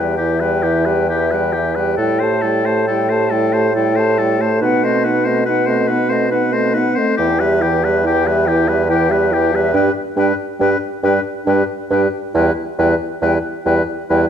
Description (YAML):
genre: classical, slow romantic movement for wind quintet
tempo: 69 BPM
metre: 3/4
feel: rubato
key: E minor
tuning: A4 = 440 Hz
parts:
  - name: silver concert flute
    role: melody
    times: 0.0-14.2 s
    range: D#5 to A5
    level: -23 LUFS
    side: left 9 dB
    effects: none
  - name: clear oboe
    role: second line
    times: 0.0-14.3 s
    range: G4 to C5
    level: -21 LUFS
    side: left 4 dB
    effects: none
  - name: dark clarinet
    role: accompaniment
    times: 0.0-14.3 s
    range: C4 to G4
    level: -21 LUFS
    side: right 4 dB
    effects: none
  - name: warm French horn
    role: accompaniment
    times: 0.0-14.3 s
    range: E3 to B3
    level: -21 LUFS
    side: left 1 dB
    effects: none
  - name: mellow bassoon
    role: bass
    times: 0.0-14.3 s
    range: E2 to B2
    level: -18 LUFS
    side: right 2 dB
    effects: none
room: moderate recital hall reverb, RT60 1.5 s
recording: dark, warm production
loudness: -14 LUFS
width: side -8 dB against mid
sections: 0.0-14.3 A section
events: none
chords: 0.0 Em; 2.0 Am7; 4.6 B7b9; 7.2 Em; 9.7 G; 12.3 Em